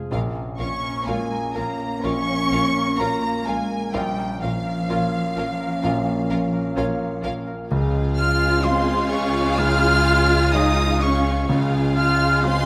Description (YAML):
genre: cinematic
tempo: 63 BPM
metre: 4/4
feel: rubato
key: unclear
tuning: A4 = 438 Hz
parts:
  - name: warm grand piano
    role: accompaniment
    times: 0.0-12.7 s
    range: F1 to F5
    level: -28 LUFS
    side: equal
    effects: none
  - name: concert harp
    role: arpeggios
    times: 0.0-12.7 s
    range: F2 to C6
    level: -35 LUFS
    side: equal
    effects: none
  - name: warm studio violin section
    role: second line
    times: 0.1-12.7 s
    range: Ab4 to F5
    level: -32 LUFS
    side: equal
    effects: none
  - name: rich studio viola section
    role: accompaniment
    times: 0.1-12.7 s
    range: Db3 to F4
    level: -31 LUFS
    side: equal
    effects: none
  - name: warm French horn section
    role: sustained chords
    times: 0.1-12.7 s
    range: Db3 to Db4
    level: -31 LUFS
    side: equal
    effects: none
  - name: warm studio double bass section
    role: bass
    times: 0.1-12.7 s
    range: Bb1 to Db2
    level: -29 LUFS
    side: equal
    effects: none
  - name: warm studio violin section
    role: melody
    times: 0.6-12.7 s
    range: F5 to F6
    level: -31 LUFS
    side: equal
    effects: none
  - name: mellow hollow concert flute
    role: second line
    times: 0.6-12.7 s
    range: F5 to F6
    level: -28 LUFS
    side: equal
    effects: none
  - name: warm studio cello section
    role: bass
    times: 0.6-12.7 s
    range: F3 to F4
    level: -29 LUFS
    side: equal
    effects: none
room: moderate scoring stage reverb, RT60 1.5 s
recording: none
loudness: -21 LUFS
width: mono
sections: 0.0-12.7 A section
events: none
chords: 0.1 Bbm; 7.7 Db